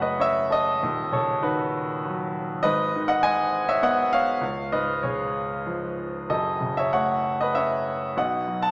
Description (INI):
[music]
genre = classical, lyrical solo piano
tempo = 98 BPM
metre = 3/4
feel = rubato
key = F# dorian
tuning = A4 = 440 Hz
[part]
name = clear concert grand piano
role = solo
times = 0.0-8.7 s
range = D#1 to A5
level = -25 LUFS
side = equal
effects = none
[sound]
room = wet recital hall reverb, RT60 1.4 s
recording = none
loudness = -25 LUFS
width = mono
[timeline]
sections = 0.0-8.7 A section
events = none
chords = 0.0 F#m; 0.8 D#m7b5; 2.6 G#m; 4.4 C#7; 6.3 F#m; 8.2 B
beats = 0.17 | 0.79 1.40 2.01 | 2.61 3.21 3.81 | 4.41 5.02 5.65 | 6.29 6.92 7.55 | 8.16